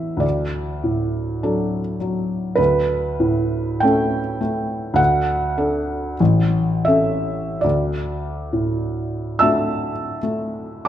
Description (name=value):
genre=classical, romantic nocturne for solo piano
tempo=32-54 BPM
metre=4/4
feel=rubato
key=D major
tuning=A4 = 440 Hz
part: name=felt-muted upright piano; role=solo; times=0.0-10.9 s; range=A1 to E6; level=-18 LUFS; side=equal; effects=none
room=wet recital hall reverb, RT60 1.6 s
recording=dark, warm production, nothing above 10.9 kHz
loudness=-18 LUFS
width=side -11 dB against mid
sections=0.0-10.9 A section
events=none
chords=0.2 D; 2.6 A7/D; 5.0 D; 6.2 A; 7.6 D